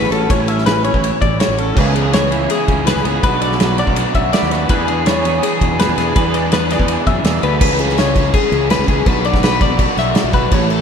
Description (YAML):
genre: math rock and midwest emo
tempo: 165 BPM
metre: 4/4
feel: straight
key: unclear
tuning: A4 = 439 Hz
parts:
  - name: clean electric guitar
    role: accompaniment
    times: 0.0-7.6 s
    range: F#2 to B4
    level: -23 LUFS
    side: right 6 dB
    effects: ensemble chorus
  - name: twelve-string electric guitar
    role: arpeggios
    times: 0.0-10.8 s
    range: G#4 to E5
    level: -18 LUFS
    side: left 4 dB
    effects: none
  - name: fuzz fingered electric bass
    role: bass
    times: 0.0-10.8 s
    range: A1 to F#2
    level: -20 LUFS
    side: equal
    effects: overdrive
  - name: loose indie drum kit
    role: drums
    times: 0.0-10.8 s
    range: crash cymbal, kick drum, ride cymbal, snare drum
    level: -17 LUFS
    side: equal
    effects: none
  - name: crunchy overdriven guitar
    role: riff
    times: 1.8-10.8 s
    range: A2 to G#4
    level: -21 LUFS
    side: right 3 dB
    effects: none
room: moderate lush hall reverb, RT60 2.3 s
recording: dreamy mix soaked in reverb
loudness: -13 LUFS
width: side -7 dB against mid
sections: 0.0-7.6 A section; 7.6-10.8 B section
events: none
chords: 0.0 A; 1.8 C#m7; 3.2 Bm7; 4.7 E7; 7.6 C#m7; 9.1 Bm